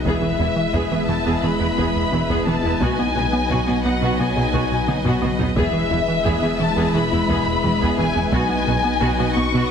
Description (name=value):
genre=cinematic, hybrid orchestral and electronic film score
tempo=87 BPM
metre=4/4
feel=straight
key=unclear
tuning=A4 = 441 Hz
part: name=dark symphonic violin section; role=melody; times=0.0-9.7 s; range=E5 to C#6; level=-24 LUFS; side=left 4 dB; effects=none
part: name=hollow soft pad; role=sustained chords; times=0.0-9.7 s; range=F#3 to E5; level=-28 LUFS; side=equal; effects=ensemble chorus
part: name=mellow French horn section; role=sustained chords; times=0.0-9.7 s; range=F#3 to E4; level=-27 LUFS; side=left 6 dB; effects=none
part: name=rubbery square bass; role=riff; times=0.0-9.6 s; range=E2 to B3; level=-25 LUFS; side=right 2 dB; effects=none
part: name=saturated sub bass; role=bass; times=0.0-9.7 s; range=E1 to B1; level=-30 LUFS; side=equal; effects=none
part: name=clear symphonic violin section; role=second line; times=0.1-9.7 s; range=B4 to E5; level=-30 LUFS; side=left 1 dB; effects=none
part: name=rich symphonic viola section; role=accompaniment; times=0.1-9.7 s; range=B3 to G#4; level=-26 LUFS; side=right 2 dB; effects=none
part: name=harp-like synth pluck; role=arpeggios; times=0.1-9.6 s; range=E3 to G#4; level=-30 LUFS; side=left 4 dB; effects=none
part: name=clear studio cello section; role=bass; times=0.1-9.6 s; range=E2 to B2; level=-29 LUFS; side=right 3 dB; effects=none
part: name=clear symphonic double bass section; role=bass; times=0.1-9.4 s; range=E1 to B1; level=-30 LUFS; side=right 3 dB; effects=none
part: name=taiko ensemble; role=drums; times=0.1-9.7 s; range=none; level=-30 LUFS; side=equal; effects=none
room=moderate scoring stage reverb, RT60 2.1 s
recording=heavily compressed radio sound, multiband compression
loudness=-17 LUFS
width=side -7 dB against mid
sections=0.0-9.7 A section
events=drum fill 4.9-5.6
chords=0.0 E; 2.8 B6; 5.6 E; 8.3 B6